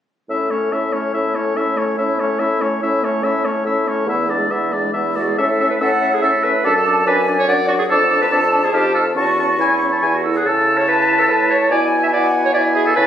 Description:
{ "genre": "quick classical-period movement for wind quintet", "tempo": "143 BPM", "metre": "3/4", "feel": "rubato", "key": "A major", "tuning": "A4 = 440 Hz", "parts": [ { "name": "clear oboe", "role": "second line", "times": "0.3-13.1 s", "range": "C#5 to A5", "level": "-20 LUFS", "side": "left 3 dB", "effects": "none" }, { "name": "bright clarinet", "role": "accompaniment", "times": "0.3-13.1 s", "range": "C#4 to E5", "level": "-19 LUFS", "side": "right 4 dB", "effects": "none" }, { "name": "clear French horn", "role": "accompaniment", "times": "0.3-13.1 s", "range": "G#3 to E4", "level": "-25 LUFS", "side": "left 1 dB", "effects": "none" }, { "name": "mellow bassoon", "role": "bass", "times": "0.3-13.1 s", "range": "E2 to C#3", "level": "-21 LUFS", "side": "equal", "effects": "none" }, { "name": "silver concert flute", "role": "melody", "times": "5.4-13.1 s", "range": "E5 to C#6", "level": "-21 LUFS", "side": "left 3 dB", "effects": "none" } ], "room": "moderate concert hall reverb, RT60 2.0 s", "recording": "recorded on a phone in the room, club reverb", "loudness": "-14 LUFS", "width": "side -9 dB against mid", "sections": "0.3-5.4 A section; 5.4-13.1 B section", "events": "none", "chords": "0.3 A; 4.1 E7; 5.4 A; 6.6 D/F#; 7.9 Dm/F; 8.7 F7; 9.2 A/E; 10.0 E; 10.5 A/C#; 11.7 E/B" }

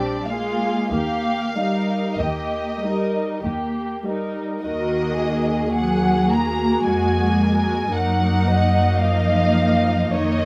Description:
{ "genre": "classical, slow romantic movement for string orchestra", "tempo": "46-56 BPM", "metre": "3/4", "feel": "rubato", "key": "Eb major, Eb minor from 4.6 s", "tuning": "A4 = 440 Hz", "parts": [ { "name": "muted studio violin section", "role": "melody", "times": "0.0-10.5 s", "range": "D5 to Bb5", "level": "-28 LUFS", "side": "equal", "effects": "none" }, { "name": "muted chamber violin section", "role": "second line", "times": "0.0-10.5 s", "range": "D4 to Eb5", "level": "-29 LUFS", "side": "equal", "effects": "none" }, { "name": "muted studio viola section", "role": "accompaniment", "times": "0.0-10.5 s", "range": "G3 to Gb4", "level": "-26 LUFS", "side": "equal", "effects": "none" }, { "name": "muted studio double bass section", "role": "bass", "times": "0.0-10.5 s", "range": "Bb1 to Gb2", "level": "-27 LUFS", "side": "equal", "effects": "none" }, { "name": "muted symphonic cello section", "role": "bass", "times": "0.0-10.5 s", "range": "Bb2 to Bb3", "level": "-26 LUFS", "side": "equal", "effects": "none" } ], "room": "moderate studio reverb, RT60 0.5 s", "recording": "none", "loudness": "-21 LUFS", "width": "mono", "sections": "0.0-4.6 A section; 4.6-10.5 B section", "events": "none", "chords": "0.0 Bb13; 0.9 Eb; 4.6 Ebm; 7.9 Ebm/Gb" }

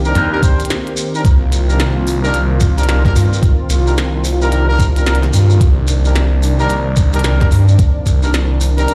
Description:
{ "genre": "glitch hop", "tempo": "110 BPM", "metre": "4/4", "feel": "swing 62% on 16ths", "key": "C minor", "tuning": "A4 = 442 Hz", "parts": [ { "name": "warm analog pad", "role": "sustained chords", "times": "0.0-8.9 s", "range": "Eb3 to G4", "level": "-24 LUFS", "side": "equal", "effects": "chorus, vintage 12-bit sampler grit, sidechain pumping" }, { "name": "phased detuned saw bass", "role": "bass", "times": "0.0-8.9 s", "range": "C2 to G2", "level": "-16 LUFS", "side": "equal", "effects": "phaser" }, { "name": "shekere", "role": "percussion", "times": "0.0-8.9 s", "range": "none", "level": "-30 LUFS", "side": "equal", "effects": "none" }, { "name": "mellow horn section", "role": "stabs", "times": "0.1-8.9 s", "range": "D4 to C5", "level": "-24 LUFS", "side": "equal", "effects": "vintage 12-bit sampler grit, sidechain pumping, tape echo" }, { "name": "glitchy drum kit", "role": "drums", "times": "0.2-8.9 s", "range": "hi-hat, snare drum", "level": "-26 LUFS", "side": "equal", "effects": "none" }, { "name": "electronic kick drum", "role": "drums", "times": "0.4-8.2 s", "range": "none", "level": "-13 LUFS", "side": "equal", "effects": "overdrive" } ], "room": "digital ambience", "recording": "played on a big sound system in a bare room, large studio reverb, lossy compression artefacts", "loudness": "-14 LUFS", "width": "mono", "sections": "0.0-8.9 A section", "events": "none", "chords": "0.0 Cm7" }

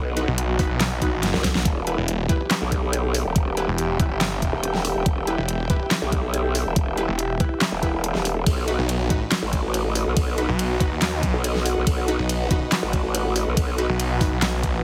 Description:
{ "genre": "heavy wobble dubstep", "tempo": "141 BPM", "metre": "4/4", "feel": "half-time", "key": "E harmonic minor", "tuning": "A4 = 439 Hz", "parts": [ { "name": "growl bass", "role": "bass", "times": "0.0-13.9 s", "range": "E1 to C2", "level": "-26 LUFS", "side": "equal", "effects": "chorus, overdrive" }, { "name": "airy breathy pad", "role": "texture", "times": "0.0-14.8 s", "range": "F#4 to G5", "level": "-32 LUFS", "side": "equal", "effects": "chorus, sidechain pumping" }, { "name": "orchestra-hit-like synth stab", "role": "stabs", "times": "0.2-14.3 s", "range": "D#4 to B4", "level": "-33 LUFS", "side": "equal", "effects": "built-in reverb, dub echo" }, { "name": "dubstep drum kit", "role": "drums", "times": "0.2-14.7 s", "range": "handclaps, hi-hat, ride cymbal, snare drum", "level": "-29 LUFS", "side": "equal", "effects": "overdrive, studio reverb" }, { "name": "snarling distorted saw bass", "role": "bass", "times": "0.3-14.8 s", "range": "E1 to D#2", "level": "-27 LUFS", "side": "equal", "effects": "overdrive" }, { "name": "electronic kick drum", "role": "drums", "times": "0.6-14.7 s", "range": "none", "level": "-25 LUFS", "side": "equal", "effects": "overdrive, studio reverb" } ], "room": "light reverb, digital ambience", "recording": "heavily compressed radio sound", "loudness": "-23 LUFS", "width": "mono", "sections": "0.0-14.8 A section", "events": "drum fill 1.2-1.7", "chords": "0.0 B; 1.7 Em; 8.5 B" }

